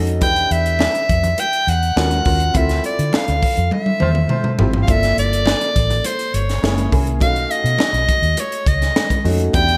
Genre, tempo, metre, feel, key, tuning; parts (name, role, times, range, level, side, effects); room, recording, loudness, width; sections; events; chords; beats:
polished 1980s jazz-funk pop; 103 BPM; 4/4; straight; A4 = 441 Hz
warm grand piano; accompaniment; 0.0-9.8 s; A3 to B4; -27 LUFS; equal; subtle chorus
vintage muted fingered electric bass; bass; 0.0-9.8 s; F#1 to D3; -22 LUFS; equal
crisp fusion drum kit; drums; 0.1-9.8 s; hi-hat, kick drum, snare drum, toms; -22 LUFS; equal; gated reverb
edgy soprano saxophone; melody; 0.2-9.8 s; C5 to G5; -22 LUFS; equal
congas; percussion; 0.2-9.7 s; -34 LUFS; equal
mellow horn section; second line; 4.0-4.7 s; A3 to C5; -27 LUFS; equal
light reverb, small room ambience; bright 1980s-style digital production; -17 LUFS; mono
0.0-9.8 A section
band accent 2.6-4.9; drum fill 3.7-4.9
0.2 Em7; 2.0 Ebm9; 2.6 Dm9; 4.9 Gm7; 6.6 F#7; 7.2 B7
| 0.22 0.80 1.39 1.97 | 2.55 3.13 3.72 4.30 | 4.88 5.46 6.05 6.63 | 7.21 7.79 8.38 8.96 | 9.54